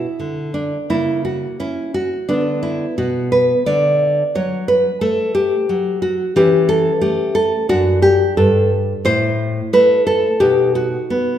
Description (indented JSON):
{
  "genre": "classical, baroque-style dance for nylon-string guitar",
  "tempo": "88 BPM",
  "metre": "4/4",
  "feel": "rubato",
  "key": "unclear",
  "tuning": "A4 = 440 Hz",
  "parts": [
    { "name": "nylon-string guitar", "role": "solo", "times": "0.0-11.4 s", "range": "F#2 to D5", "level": "-14 LUFS", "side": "equal", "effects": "none" }
  ],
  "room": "wet recital hall reverb, RT60 1.4 s",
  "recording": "minimal, uncompressed stereo recording",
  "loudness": "-14 LUFS",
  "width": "side -10 dB against mid",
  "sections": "0.0-11.4 A section",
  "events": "none",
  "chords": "0.0 N.C.; 0.9 F#7/C#; 2.3 Bm/D; 3.7 D; 6.4 A/E; 7.7 D/F#; 9.0 Amadd9; 10.4 B",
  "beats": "0.20 | 0.90 1.60 2.29 2.99 | 3.68 4.36 5.03 5.70 | 6.37 7.04 7.70 8.37 | 9.05 9.73 10.42 11.11"
}